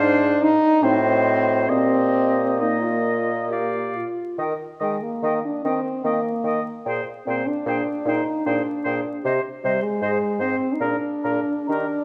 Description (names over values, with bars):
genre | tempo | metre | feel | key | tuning
classical, slow romantic movement for wind quintet | 64-81 BPM | 3/4 | rubato | Eb major | A4 = 439 Hz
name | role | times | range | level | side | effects
wooden flute | melody | 0.0-11.8 s | Eb5 to Bb5 | -34 LUFS | equal | none
clear oboe | second line | 0.0-11.9 s | Bb4 to Eb5 | -31 LUFS | equal | none
mellow clarinet | accompaniment | 0.0-11.9 s | Eb4 to Bb4 | -34 LUFS | equal | none
warm French horn | accompaniment | 0.0-12.0 s | G3 to Eb4 | -24 LUFS | equal | none
clear bassoon | bass | 0.0-11.8 s | Ab2 to Eb3 | -28 LUFS | equal | none
room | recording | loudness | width
wet recital hall reverb, RT60 1.3 s | vinyl crackle | -22 LUFS | mono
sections
0.0-12.0 A section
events
none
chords
0.0 Ab6; 0.8 Adim7; 1.7 Eb/Bb; 3.5 Bb; 4.4 Eb; 6.9 Bb13; 9.2 Cm; 10.0 Ab; 10.8 Bb7